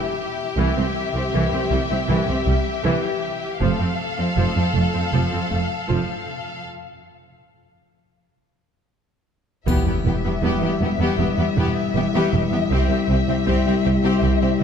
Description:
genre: cinematic, epic orchestral film score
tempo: 79 BPM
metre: 4/4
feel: straight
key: E phrygian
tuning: A4 = 439 Hz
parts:
  - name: warm symphonic violin section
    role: melody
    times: 0.0-14.6 s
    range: E5 to F5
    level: -28 LUFS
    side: left 6 dB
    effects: none
  - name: clear studio violin section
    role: second line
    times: 0.0-14.5 s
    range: G4 to A4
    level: -28 LUFS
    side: left 4 dB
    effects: none
  - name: clear symphonic viola section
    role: accompaniment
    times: 0.6-14.6 s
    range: E3 to C4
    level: -28 LUFS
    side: right 1 dB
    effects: none
  - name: rich studio cello section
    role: bass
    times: 0.6-14.6 s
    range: C2 to F2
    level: -24 LUFS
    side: right 3 dB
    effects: none
  - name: rich studio double bass section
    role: bass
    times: 0.6-14.6 s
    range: E1 to C2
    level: -24 LUFS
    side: right 2 dB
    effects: none
  - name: dark French horn section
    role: sustained chords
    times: 9.7-14.6 s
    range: G3 to E4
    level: -23 LUFS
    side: left 5 dB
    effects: none
  - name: solo taiko drums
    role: drums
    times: 9.7-11.2 s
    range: none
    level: -26 LUFS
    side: left 1 dB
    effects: none
  - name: triangle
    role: percussion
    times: 9.7-11.2 s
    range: none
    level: -43 LUFS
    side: left 5 dB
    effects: none
  - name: impact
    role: sound effects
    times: 9.7-12.7 s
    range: none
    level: -30 LUFS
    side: left 2 dB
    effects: none
room: moderate concert hall reverb, RT60 2.5 s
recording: dark, warm production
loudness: -18 LUFS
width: side -7 dB against mid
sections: 0.0-9.7 A section; 9.7-14.6 B section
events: build-up 0.0-9.7; break 6.7-9.7; impact 9.7-12.7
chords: 0.0 Em; 0.6 C; 3.6 F; 6.7 N.C.; 9.7 Em; 12.7 C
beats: | 0.59 1.35 2.10 2.86 | 3.62 4.38 5.14 5.89 | 6.65 7.41 8.17 8.92 | 9.68 10.44 11.20 11.95 | 12.71 13.47 14.22

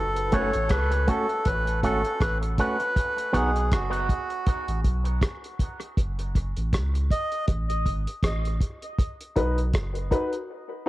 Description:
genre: dub reggae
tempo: 80 BPM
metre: 4/4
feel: swing 57% on 16ths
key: F# dorian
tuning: A4 = 440 Hz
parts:
  - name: melodica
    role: melody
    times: 0.0-7.5 s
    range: F#4 to D#5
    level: -29 LUFS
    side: equal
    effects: dub echo
  - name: warm sub bass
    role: bass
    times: 0.0-10.1 s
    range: F#1 to C#2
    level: -27 LUFS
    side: equal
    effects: tube saturation
  - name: cloth-damped thuddy drum kit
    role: drums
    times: 0.2-10.5 s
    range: hi-hat, kick drum, rim click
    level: -26 LUFS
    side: equal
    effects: cassette tape
  - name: electric guitar with an envelope filter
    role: accompaniment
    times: 0.3-3.5 s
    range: A3 to F#4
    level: -30 LUFS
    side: right 2 dB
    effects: cassette tape, dub echo
  - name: dark upright piano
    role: stabs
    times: 9.4-10.9 s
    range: D#4 to B4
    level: -30 LUFS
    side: left 2 dB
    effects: cassette tape, dub echo
room: light reverb, small room ambience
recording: home recording on cassette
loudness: -23 LUFS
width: side -17 dB against mid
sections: 0.0-10.9 A section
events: break 0.0-10.9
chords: 0.0 F#m; 3.0 B5; 6.0 F#m; 9.0 B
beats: 0.70 1.46 2.21 | 2.96 3.71 4.47 5.22 | 5.97 6.73 7.48 8.23 | 8.99 9.74 10.49

